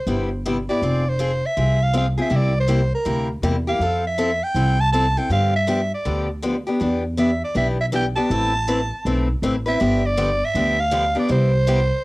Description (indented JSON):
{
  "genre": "acoustic string swing (jazz manouche)",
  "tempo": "160 BPM",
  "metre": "4/4",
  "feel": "swing 63% on 8ths",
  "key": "C major",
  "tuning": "A4 = 440 Hz",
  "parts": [
    { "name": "growling soprano saxophone", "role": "melody", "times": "0.0-12.0 s", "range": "Bb4 to A5", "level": "-22 LUFS", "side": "right 1 dB", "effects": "none" },
    { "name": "picked acoustic archtop guitar", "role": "accompaniment", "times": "0.1-11.8 s", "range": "C3 to B4", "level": "-23 LUFS", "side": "left 2 dB", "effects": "none" },
    { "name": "upright bass", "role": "bass", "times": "0.1-11.9 s", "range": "F1 to G2", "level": "-22 LUFS", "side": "equal", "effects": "none" }
  ],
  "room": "moderate small room reverb, RT60 0.5 s",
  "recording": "home recording on cassette",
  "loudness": "-18 LUFS",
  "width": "side -21 dB against mid",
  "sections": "0.8-12.0 A section",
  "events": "none",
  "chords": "0.0 Cmaj7; 0.8 Fm; 2.3 C7; 3.8 Fmaj7; 5.3 G7; 6.8 Em7; 8.3 Amadd9; 9.8 G7; 11.3 Cmaj7"
}